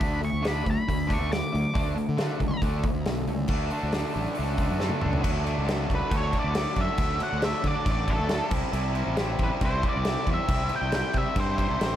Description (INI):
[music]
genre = classic rock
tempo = 137 BPM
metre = 4/4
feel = straight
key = unclear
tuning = A4 = 440 Hz
[part]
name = octave-fuzz lead guitar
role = melody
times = 0.0-2.6, 5.9-12.0 s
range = A4 to D6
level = -31 LUFS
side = left 1 dB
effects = distortion, tape echo
[part]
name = distorted electric guitar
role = riff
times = 0.0-12.0 s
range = C3 to E4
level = -29 LUFS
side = equal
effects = overdrive
[part]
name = fuzz fingered electric bass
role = bass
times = 0.0-12.0 s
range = A1 to D3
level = -29 LUFS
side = equal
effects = overdrive
[part]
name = big rock drum kit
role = drums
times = 0.0-11.9 s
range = crash cymbal, hi-hat, kick drum, snare drum, toms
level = -29 LUFS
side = equal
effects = none
[sound]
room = light reverb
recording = none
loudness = -24 LUFS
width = side -11 dB against mid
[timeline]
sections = 0.0-3.5 A section; 3.5-5.3 B section; 5.3-12.0 C section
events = lead electric guitar solo 0.0-3.5; drum fill 4.8-5.3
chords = 0.0 D5; 5.3 D; 8.5 C